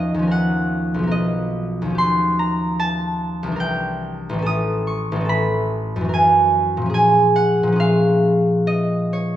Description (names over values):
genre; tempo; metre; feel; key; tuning
classical, solo harp piece; 62-77 BPM; 3/4; rubato; unclear; A4 = 439 Hz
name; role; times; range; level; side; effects
concert harp; solo; 0.0-9.4 s; A1 to Eb6; -17 LUFS; equal; none
room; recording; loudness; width
wet recital hall reverb, RT60 1.4 s; none; -17 LUFS; side -12 dB against mid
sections
0.0-9.4 A section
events
none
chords
0.0 Ebm9; 2.0 Eb9; 3.6 C9; 4.5 A9; 6.1 Gb9; 6.9 Bbm7